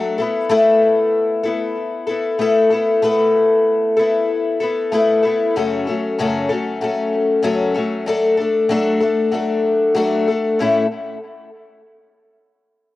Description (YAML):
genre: rock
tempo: 95 BPM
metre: 4/4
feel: straight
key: A major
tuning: A4 = 444 Hz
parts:
  - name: picked twelve-string acoustic guitar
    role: solo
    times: 0.0-10.9 s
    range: F#2 to A4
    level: -15 LUFS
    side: left 2 dB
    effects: cassette tape, analog delay
room: moderate spring reverb, RT60 2.8 s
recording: home recording on cassette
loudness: -15 LUFS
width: side -16 dB against mid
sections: 0.0-5.5 A section; 5.5-10.6 B section; 10.6-13.0 C section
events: none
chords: 0.2 Asus2; 5.5 F#m; 8.1 D/F#; 10.6 A